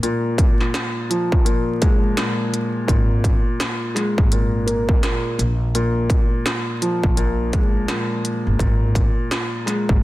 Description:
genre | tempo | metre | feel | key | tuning
hip hop, boom-bap hip-hop | 84 BPM | 4/4 | swing 62% on 16ths | unclear | A4 = 440 Hz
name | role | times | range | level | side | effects
dark grand piano | accompaniment | 0.0-10.0 s | Bb2 to Bb3 | -22 LUFS | left 1 dB | high-pass filter, low-pass filter
industrial drum kit | drums | 0.0-10.0 s | hi-hat, kick drum, snare drum | -19 LUFS | equal | distortion
upright bass | bass | 2.9-10.0 s | G1 to Bb1 | -21 LUFS | equal | none
room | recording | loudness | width
small room ambience | dense, heavily limited modern master, vinyl crackle | -17 LUFS | side -17 dB against mid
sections
0.0-2.9 A section; 2.9-10.0 B section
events
break 0.0-2.9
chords
0.0 Bb5; 2.9 Absus2; 5.4 Bb5; 8.6 Absus2

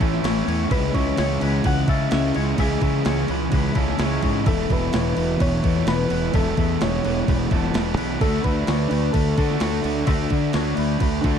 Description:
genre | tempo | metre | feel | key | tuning
rock, shoegaze and dream pop | 128 BPM | 4/4 | straight | unclear | A4 = 440 Hz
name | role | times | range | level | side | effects
soft struck synth lead | melody | 0.0-11.4 s | G#4 to F#5 | -29 LUFS | left 1 dB | chorus, tape echo
twangy electric guitar | arpeggios | 0.0-11.4 s | A4 to E5 | -33 LUFS | left 11 dB | lush chorus, tape echo
crunchy overdriven guitar | riff | 0.0-11.4 s | E2 to F#4 | -26 LUFS | right 12 dB | reverse reverb
thick fuzz guitar | riff | 0.0-11.4 s | E2 to D4 | -26 LUFS | left 12 dB | distortion, analog chorus
fuzz fingered electric bass | bass | 0.0-11.4 s | E1 to D3 | -24 LUFS | equal | overdrive
clean 12-bit digital drum machine | drums | 0.0-11.4 s | crash cymbal, kick drum, snare drum | -24 LUFS | right 1 dB | none
room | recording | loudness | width
digital ambience | dark, warm production | -19 LUFS | side -8 dB against mid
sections
0.0-11.4 A section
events
none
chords
0.0 A; 0.7 C#m; 4.5 Esus4; 8.2 Dadd9

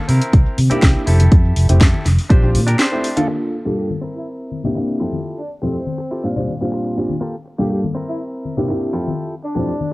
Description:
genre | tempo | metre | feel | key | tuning
filtered disco house | 122 BPM | 4/4 | straight | unclear | A4 = 440 Hz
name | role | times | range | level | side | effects
direct-recorded clean electric guitar | riff | 0.0-9.7 s | Bb3 to C5 | -27 LUFS | equal | sidechain pumping, low-pass filter, cassette tape
fingered electric bass | bass | 0.1-2.7 s | F1 to C3 | -14 LUFS | equal | sidechain pumping, low-pass filter
house drum kit | drums | 0.1-3.3 s | hi-hat, snare drum | -22 LUFS | equal | overdrive, sidechain pumping on hats
maracas and congas | percussion | 0.2-9.9 s | none | -27 LUFS | left 4 dB | sidechain pumping on perc, low-pass filter on perc
electronic kick drum | drums | 0.3-2.4 s | none | -12 LUFS | equal | overdrive
warm grand piano | accompaniment | 0.7-9.7 s | F2 to A4 | -20 LUFS | equal | phaser, sidechain pumping, low-pass filter, cassette tape
clear horn section | melody | 3.7-9.9 s | C4 to G4 | -27 LUFS | equal | sidechain pumping, low-pass filter, cassette tape
room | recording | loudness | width
little or no reverb | home recording on cassette | -15 LUFS | side -21 dB against mid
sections
0.0-3.3 A section; 3.3-9.9 B section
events
filter sweep 0.0-3.3, 3.3-9.9; break 2.8-3.3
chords
0.1 C7; 1.1 Fmaj9; 2.3 Bb69; 2.8 D7sus4; 3.3 Gm9; 4.0 C7; 5.0 Fmaj9; 6.2 Bb69; 7.2 Gm9; 8.0 C7; 8.9 Fmaj9

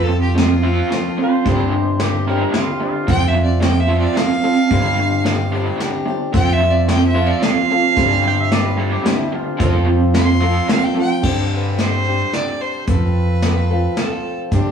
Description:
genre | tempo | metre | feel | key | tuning
folk rock and heartland rock | 110 BPM | 3/4 | straight | unclear | A4 = 440 Hz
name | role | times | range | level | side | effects
clear fiddle | melody | 0.0-14.4 s | F4 to C6 | -21 LUFS | right 2 dB | none
clear grand piano | accompaniment | 0.0-14.7 s | C4 to C5 | -31 LUFS | right 3 dB | none
picked old ladder-braced acoustic guitar | accompaniment | 0.0-14.7 s | G2 to A4 | -23 LUFS | left 4 dB | none
raw garage guitar | riff | 0.0-11.2 s | G2 to F4 | -20 LUFS | right 3 dB | overdrive, tremolo
fingered electric bass | bass | 0.0-14.7 s | F2 to G2 | -19 LUFS | equal | none
soft brush drum kit | drums | 0.4-14.6 s | crash cymbal, hi-hat, kick drum, snare drum | -22 LUFS | equal | none
pedal steel guitar | second line | 1.2-3.1, 8.3-10.0 s | E4 to G5 | -26 LUFS | right 2 dB | none
room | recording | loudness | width
moderate studio reverb, RT60 0.9 s | band playing live in one room, small room ambience | -14 LUFS | side -7 dB against mid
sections
0.0-11.2 A section; 11.2-14.7 B section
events
fiddle solo 0.0-11.2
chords
0.0 F; 1.5 Gsus4; 3.1 F; 4.7 Gsus4; 6.3 F; 8.0 Gsus4; 9.6 F; 11.2 Gsus4; 12.9 F

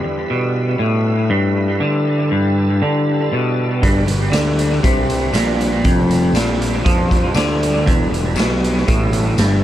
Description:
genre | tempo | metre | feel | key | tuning
psychedelic rock | 119 BPM | 4/4 | straight | unclear | A4 = 442 Hz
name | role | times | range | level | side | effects
bright tonewheel organ | sustained chords | 0.0-9.6 s | G3 to B4 | -30 LUFS | right 3 dB | slow rotary speaker, overdrive, chorus vibrato
twangy electric guitar | riff | 0.0-9.6 s | E2 to F3 | -16 LUFS | equal | rotary speaker, dub echo
pedal harmonium | drone | 0.0-9.6 s | G2 to G3 | -29 LUFS | right 1 dB | none
fuzz picked electric bass | bass | 3.8-9.6 s | E1 to F2 | -21 LUFS | equal | overdrive
raw garage drum kit | drums | 3.8-9.5 s | hi-hat, kick drum, snare drum | -19 LUFS | equal | dub echo
tambourine | percussion | 4.3-9.5 s | none | -35 LUFS | left 7 dB | dub echo
room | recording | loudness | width
light reverb, small room ambience | echo-heavy mix | -14 LUFS | side -12 dB against mid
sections
0.0-9.6 A section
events
none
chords
0.0 E5; 3.8 Gmaj7; 7.9 E5

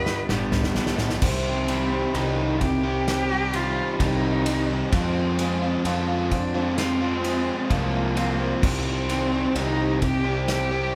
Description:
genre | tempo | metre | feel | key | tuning
post-rock | 65 BPM | 4/4 | straight | C minor | A4 = 442 Hz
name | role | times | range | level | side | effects
rich cello | melody | 0.0-10.9 s | Bb3 to B4 | -31 LUFS | equal | none
twangy electric guitar | arpeggios | 0.0-8.6 s | F2 to G4 | -35 LUFS | equal | none
overdriven electric guitar | riff | 0.0-10.9 s | G2 to G4 | -29 LUFS | equal | spring reverb
fuzz picked electric bass | bass | 0.0-10.9 s | G1 to G2 | -30 LUFS | equal | overdrive
loose indie drum kit | drums | 0.1-10.7 s | crash cymbal, kick drum, ride cymbal, snare drum, toms | -31 LUFS | equal | none
room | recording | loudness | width
moderate recital hall reverb, RT60 1.7 s | recorded in a church or concert hall | -24 LUFS | mono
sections
0.0-1.2 A section; 1.2-10.9 B section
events
build-up 0.0-1.2; drum fill 0.0-1.2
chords
0.0 G; 1.2 Cm; 4.9 Fm; 8.6 Cm

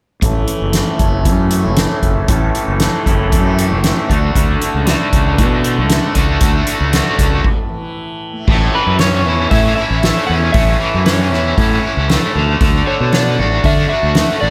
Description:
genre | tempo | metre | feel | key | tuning
psychedelic rock | 116 BPM | 4/4 | straight | A major | A4 = 440 Hz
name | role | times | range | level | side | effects
bright tonewheel organ | sustained chords | 0.2-14.5 s | C#5 to A5 | -31 LUFS | equal | none
overdriven electric guitar | riff | 0.2-14.5 s | A2 to A4 | -20 LUFS | equal | harmonic tremolo, low-pass filter
fuzz fingered electric bass | bass | 0.2-14.5 s | F#1 to D3 | -19 LUFS | equal | overdrive
tanpura | drone | 0.2-14.5 s | A2 to A3 | -31 LUFS | equal | none
soft-mallet drum kit | drums | 0.2-14.3 s | crash cymbal, hi-hat, kick drum, snare drum | -19 LUFS | equal | none
electric slide guitar | melody | 8.7-14.5 s | B4 to F#5 | -22 LUFS | equal | none
room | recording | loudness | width
little or no reverb | none | -14 LUFS | mono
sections
0.2-8.5 A section; 8.5-14.5 B section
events
filter sweep 0.2-8.5; stop 7.5-8.5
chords
0.2 A; 4.1 D; 8.2 A5; 8.5 A; 12.4 D

